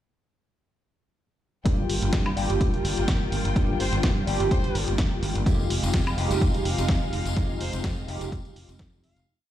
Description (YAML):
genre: filtered disco house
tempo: 126 BPM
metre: 4/4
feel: swing 54% on 16ths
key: F dorian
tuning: A4 = 440 Hz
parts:
  - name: bright tine electric piano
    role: accompaniment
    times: 1.6-9.3 s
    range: G3 to G4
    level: -30 LUFS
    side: equal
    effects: medium stereo tremolo, phaser, sidechain pumping
  - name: dark studio violin section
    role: sustained chords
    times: 1.7-9.2 s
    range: Ab3 to G5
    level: -35 LUFS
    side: left 1 dB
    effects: sidechain pumping
  - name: modern bright fingered electric bass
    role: bass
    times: 1.7-9.2 s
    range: F1 to G2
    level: -28 LUFS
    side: equal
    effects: tube saturation, sidechain pumping
  - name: dusty soul sampler-style drum kit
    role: drums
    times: 1.7-9.3 s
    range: hi-hat, snare drum, woodblock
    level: -32 LUFS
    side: equal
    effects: sidechain pumping on hats, sidechain pumping on perc
  - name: electronic kick drum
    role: drums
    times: 1.7-8.9 s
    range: none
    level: -25 LUFS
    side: equal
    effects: none
  - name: clear trumpet section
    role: melody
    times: 3.8-9.3 s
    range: C5 to F5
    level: -38 LUFS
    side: left 2 dB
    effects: sidechain pumping, tape echo
  - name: tambourine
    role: percussion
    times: 5.5-9.3 s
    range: none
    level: -40 LUFS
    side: left 5 dB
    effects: sidechain pumping on perc
room: light reverb, digital ambience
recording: played on a big sound system in a bare room, stone room reverb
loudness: -22 LUFS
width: side -12 dB against mid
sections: 1.7-9.3 drop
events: drop 1.7-9.3; fade-out 6.7-9.3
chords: 1.7 Gm7; 5.5 Fm7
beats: | 1.66 2.13 2.61 3.08 | 3.56 4.04 4.51 4.99 | 5.46 5.94 6.42 6.89 | 7.37 7.84 8.32 8.80